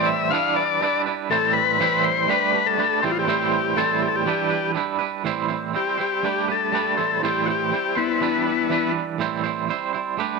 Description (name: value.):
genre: rock.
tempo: 122 BPM.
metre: 4/4.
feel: straight.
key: A minor.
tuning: A4 = 440 Hz.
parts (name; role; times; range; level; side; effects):
combo organ; melody; 0.0-8.9 s; B3 to F5; -21 LUFS; left 12 dB; slapback echo.
twangy electric guitar; riff; 0.0-10.4 s; A2 to C5; -23 LUFS; right 10 dB; tremolo.
room: moderate spring reverb, RT60 1.4 s.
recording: 1960s-style stereo with parts hard left and right.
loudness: -19 LUFS.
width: side -3 dB against mid.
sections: 0.0-5.3 A section; 5.3-10.4 B section.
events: transistor combo organ solo 5.3-10.4.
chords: 0.3 Em7; 1.3 Am7; 2.3 Gadd9; 3.0 Am7; 4.3 Em7; 5.3 Am7; 6.2 Gadd9; 7.0 Am7; 8.2 Em7; 9.2 Am7.